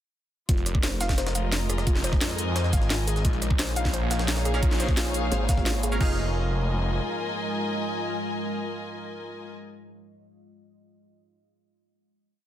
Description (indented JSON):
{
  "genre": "dark technical drum and bass",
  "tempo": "174 BPM",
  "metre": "4/4",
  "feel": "straight",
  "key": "F minor",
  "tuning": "A4 = 440 Hz",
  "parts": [
    { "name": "deep dark ambient pad", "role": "sustained chords", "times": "1.3-9.5 s", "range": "Ab3 to Eb5", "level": "-35 LUFS", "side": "right 1 dB", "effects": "chorus, built-in reverb, sidechain pumping" },
    { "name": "soft round pluck", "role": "arpeggios", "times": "0.5-6.2 s", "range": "F4 to F5", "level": "-34 LUFS", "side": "left 3 dB", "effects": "chorus, sidechain pumping, tape echo" },
    { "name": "phased detuned saw bass", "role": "bass", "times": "0.5-7.0 s", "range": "F1 to F2", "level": "-27 LUFS", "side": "equal", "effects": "phaser, tube saturation" },
    { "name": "drum and bass drum kit", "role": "drums", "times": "0.5-6.1 s", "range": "crash cymbal, hi-hat, rim click, shaker, snare drum", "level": "-30 LUFS", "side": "equal", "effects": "none" },
    { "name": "electronic kick drum", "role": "drums", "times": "0.5-6.1 s", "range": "none", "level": "-25 LUFS", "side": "equal", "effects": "none" },
    { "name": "jungle sampler-style drum kit", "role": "drums", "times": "0.5-5.9 s", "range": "hi-hat, snare drum", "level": "-38 LUFS", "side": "equal", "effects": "none" },
    { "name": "dark chamber string section", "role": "texture", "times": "0.5-9.5 s", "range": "Eb4 to Ab5", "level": "-33 LUFS", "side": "left 2 dB", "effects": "sidechain pumping" },
    { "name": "band-passed chord stab", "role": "stabs", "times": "4.5-9.5 s", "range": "Db4 to F5", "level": "-37 LUFS", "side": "right 4 dB", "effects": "chorus, tape echo" },
    { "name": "formant-sweep wobble bass", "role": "bass", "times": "5.3-6.0 s", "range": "Ab1", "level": "-27 LUFS", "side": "equal", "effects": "chorus" }
  ],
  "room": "light reverb, digital ambience",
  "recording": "dense, heavily limited modern master",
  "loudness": "-23 LUFS",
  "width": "side -12 dB against mid",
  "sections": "0.5-6.0 drop; 6.0-8.8 final chord",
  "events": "drop 0.5-6.0",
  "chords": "0.5 Fm7; 3.2 Bbm; 6.0 Fm7"
}